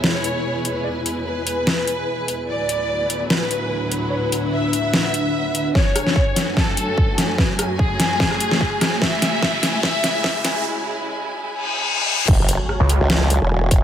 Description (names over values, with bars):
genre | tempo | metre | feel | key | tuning
heavy wobble dubstep | 147 BPM | 4/4 | swing 54% on 16ths, half-time | F# minor | A4 = 441 Hz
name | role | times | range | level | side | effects
warm studio violin section | melody | 0.0-10.6 s | G#4 to E5 | -24 LUFS | equal | low-pass filter, digital delay
dark symphonic string section | sustained chords | 0.0-13.8 s | C#2 to G#5 | -26 LUFS | equal | sidechain pumping, low-pass filter
dubstep drum kit | drums | 0.0-13.8 s | crash cymbal, hi-hat, rim click, snare drum | -20 LUFS | left 1 dB | overdrive
granular cloud pad | texture | 0.0-13.8 s | A3 to G#5 | -28 LUFS | equal | built-in reverb, sidechain pumping
electronic kick drum | drums | 5.8-13.8 s | none | -19 LUFS | equal | none
riser, reverse cymbal and impact | sound effects | 7.5-13.8 s | none | -25 LUFS | left 1 dB | none
formant-sweep wobble bass | bass | 12.3-13.8 s | E1 to C#2 | -18 LUFS | equal | chorus, overdrive
snarling distorted saw bass | bass | 12.8-13.0 s | C#2 | -15 LUFS | equal | distortion, overdrive
room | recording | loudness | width
light reverb | high-pass filter | -17 LUFS | side -10 dB against mid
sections
0.0-5.8 A section; 5.8-12.3 B section; 12.3-13.8 C section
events
build-up 5.8-12.3; drum fill 5.8-10.7; filter sweep 5.8-12.3; riser 7.5-10.7; break 10.7-12.3; reverse cymbal 11.6-12.3; drop 12.3-13.8; impact 12.3-13.8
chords
0.0 E; 2.5 D6; 5.8 F#madd9; 9.0 C#m; 12.3 F#madd9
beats
0.04 0.45 | 0.85 1.26 1.67 2.08 | 2.49 2.89 3.30 3.71 | 4.12 4.53 4.93 5.34 | 5.75 6.16 6.57 6.98 | 7.38 7.79 8.20 8.61 | 9.02 9.43 9.83 10.24 | 10.65 11.06 11.47 11.87 | 12.28 12.69 13.10 13.51